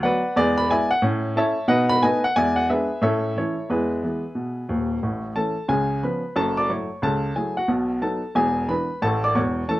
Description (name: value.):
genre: jazz, stride piano.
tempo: 180 BPM.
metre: 4/4.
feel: swing 63% on 8ths.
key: A major.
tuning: A4 = 440 Hz.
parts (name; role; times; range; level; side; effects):
warm upright piano; solo; 0.0-9.8 s; D#1 to D6; -20 LUFS; equal; none.
room: light reverb.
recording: none.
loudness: -20 LUFS.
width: side -17 dB against mid.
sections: 0.0-5.0 A section; 5.0-9.8 B section.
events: none.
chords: 0.4 E7; 1.0 A; 1.7 B7; 2.4 E7; 3.0 A; 3.7 E; 5.0 A; 5.7 C#7; 6.4 F#m7; 7.7 B7; 8.4 E7; 9.0 A.